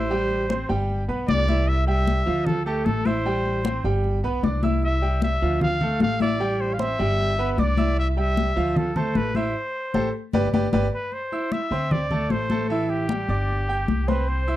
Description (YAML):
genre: latin, Cuban son and guajira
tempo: 152 BPM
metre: 4/4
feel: straight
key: C major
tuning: A4 = 440 Hz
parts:
  - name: breathy trumpet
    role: melody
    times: 0.0-14.6 s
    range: G4 to F5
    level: -27 LUFS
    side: equal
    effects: slapback echo
  - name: bright concert grand piano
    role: arpeggios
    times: 0.0-14.6 s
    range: E3 to G6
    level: -26 LUFS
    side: right 2 dB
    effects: none
  - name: upright bass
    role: bass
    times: 0.0-14.6 s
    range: G1 to D2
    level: -25 LUFS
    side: equal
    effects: none
  - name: congas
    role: percussion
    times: 0.1-14.6 s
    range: none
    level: -26 LUFS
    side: left 4 dB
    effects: none
room: little or no reverb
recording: dry, close 1970s-style studio recording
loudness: -21 LUFS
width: side -14 dB against mid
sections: 0.0-11.1 A section; 11.1-14.6 B section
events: band accent 9.6-11.1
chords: 0.1 Am7; 0.9 G; 1.7 C; 2.5 Dm; 3.3 Am7; 4.0 G; 4.8 C; 5.6 Dm; 6.4 Am7; 7.2 G; 8.0 C; 8.8 Dm; 9.6 Am7; 10.3 G; 11.1 C; 11.9 D5; 12.7 A5; 13.5 G5